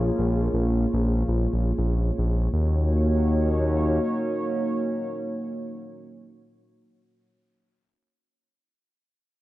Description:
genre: deep house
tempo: 120 BPM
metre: 4/4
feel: swing 61% on 16ths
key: Eb minor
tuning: A4 = 436 Hz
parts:
  - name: dark analog pad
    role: sustained chords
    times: 0.0-7.3 s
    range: Bb3 to Db5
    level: -26 LUFS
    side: equal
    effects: chorus
  - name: smooth synth bass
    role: bass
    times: 0.0-4.0 s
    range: Bb1 to Eb2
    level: -22 LUFS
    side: equal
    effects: none
room: light reverb, digital ambience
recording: dry, gritty hardware recording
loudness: -22 LUFS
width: side -16 dB against mid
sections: 0.0-2.5 A section; 2.5-6.5 B section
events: none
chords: 0.0 Bbm7; 2.5 Ebm7

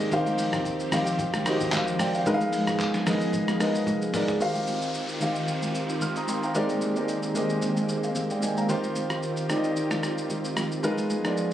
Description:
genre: amapiano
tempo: 112 BPM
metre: 4/4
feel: swing 55% on 16ths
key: Eb major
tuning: A4 = 441 Hz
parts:
  - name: warm grand piano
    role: accompaniment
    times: 0.0-11.5 s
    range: Eb3 to F6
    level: -26 LUFS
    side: equal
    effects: none
  - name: string machine, violas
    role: sustained chords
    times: 0.0-11.5 s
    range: Eb3 to Ab4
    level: -30 LUFS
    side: right 1 dB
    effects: ensemble chorus, sidechain pumping
  - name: deep log drum bass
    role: bass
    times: 0.0-4.4 s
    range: G1 to Eb2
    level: -38 LUFS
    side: equal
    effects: none
  - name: lo-fi sampler-style drum kit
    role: drums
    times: 0.0-11.5 s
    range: handclaps, hi-hat, kick drum, rim click, shaker, snare drum, toms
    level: -32 LUFS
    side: equal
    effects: none
  - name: congas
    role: percussion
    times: 0.1-11.2 s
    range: none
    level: -35 LUFS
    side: right 1 dB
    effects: none
  - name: downlifter and swell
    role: sound effects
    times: 4.4-11.5 s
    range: none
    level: -39 LUFS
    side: equal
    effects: none
room: light reverb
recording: recorded on a phone in the room, studio ambience, compression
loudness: -24 LUFS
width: side -11 dB against mid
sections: 0.0-4.4 A section; 4.4-11.5 B section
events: drop 0.0-4.4; drum fill 3.9-4.4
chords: 0.1 Eb69; 2.3 Abm6; 4.4 Eb69; 6.5 Abmaj9#11; 8.7 Eb69; 10.8 Abm6

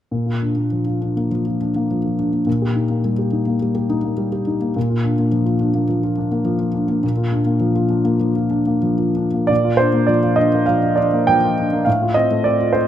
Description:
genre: classical, romantic character piece for solo piano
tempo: 86-107 BPM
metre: 4/4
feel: rubato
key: Bb major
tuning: A4 = 440 Hz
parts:
  - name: clear grand piano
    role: solo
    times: 0.1-12.9 s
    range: A2 to G5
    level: -16 LUFS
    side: equal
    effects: none
room: moderate recital hall reverb, RT60 1.5 s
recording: close, detailed microphones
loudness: -16 LUFS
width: side -10 dB against mid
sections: 0.1-9.5 A section; 9.5-12.9 B section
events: none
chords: 0.1 Bb; 2.5 Eb/Bb; 4.8 Bb; 11.9 F/A

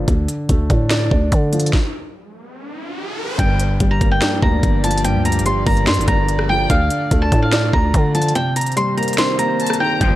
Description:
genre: hip hop, trap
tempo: 145 BPM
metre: 4/4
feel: half-time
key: G minor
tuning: A4 = 439 Hz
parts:
  - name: dark grand piano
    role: accompaniment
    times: 0.0-10.2 s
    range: G2 to D5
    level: -21 LUFS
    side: equal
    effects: low-pass filter
  - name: growling 808-style bass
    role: bass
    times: 0.0-10.2 s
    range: G1 to D3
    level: -19 LUFS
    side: equal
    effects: none
  - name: trap drum kit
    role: drums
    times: 0.1-10.1 s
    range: hi-hat, kick drum, rim click, snare drum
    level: -19 LUFS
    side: equal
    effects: overdrive
  - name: riser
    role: sound effects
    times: 2.3-3.4 s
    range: none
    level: -29 LUFS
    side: equal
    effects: none
  - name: picked swing-style acoustic guitar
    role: melody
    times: 3.4-10.2 s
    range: F5 to C6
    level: -21 LUFS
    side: equal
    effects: low-pass filter
  - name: airy breathy pad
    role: sustained chords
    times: 3.9-10.2 s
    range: D3 to D5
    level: -27 LUFS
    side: left 1 dB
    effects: chorus
  - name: warm studio violin section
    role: second line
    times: 6.5-6.7, 9.6-10.0 s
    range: G5 to Bb5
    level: -26 LUFS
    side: left 1 dB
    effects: tape echo
  - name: bright studio string section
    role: stabs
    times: 10.0-10.2 s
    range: D2 to F3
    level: -21 LUFS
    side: left 1 dB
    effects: none
room: small room reverb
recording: none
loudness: -14 LUFS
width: side -15 dB against mid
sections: 0.0-3.4 A section; 3.4-10.2 B section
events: break 0.0-3.4, 8.4-10.0; stop 1.7-3.4; riser 2.3-3.4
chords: 0.1 Dm; 1.7 N.C.; 3.4 Gm7; 6.7 Dm; 8.4 Cm7

